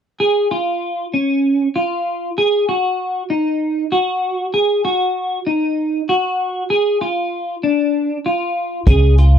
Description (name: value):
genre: progressive instrumental, band music in an uneven meter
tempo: 194 BPM (eighths)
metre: 7/8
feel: straight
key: unclear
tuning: A4 = 437 Hz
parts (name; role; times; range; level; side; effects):
- clean electric guitar; arpeggios; 0.2-9.4 s; Db4 to Ab4; -16 LUFS; equal; analog chorus
- upright bass; bass; 8.9-9.4 s; Db2; -10 LUFS; equal; none
- warm soul drum kit; drums; 8.9-9.3 s; hi-hat, kick drum; -12 LUFS; equal; none
room: light reverb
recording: dry, close 1970s-style studio recording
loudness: -16 LUFS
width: side -8 dB against mid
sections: 0.2-9.4 A section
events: none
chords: 0.2 Db; 2.4 Ab5; 6.7 Ddim; 8.9 Db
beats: | 0.20 0.51 0.82 1.13 1.44 1.75 2.06 | 2.37 2.68 2.99 3.30 3.61 3.92 4.23 | 4.54 4.84 5.16 5.46 5.77 6.08 6.39 | 6.70 7.01 7.32 7.63 7.94 8.25 8.56 | 8.87 9.18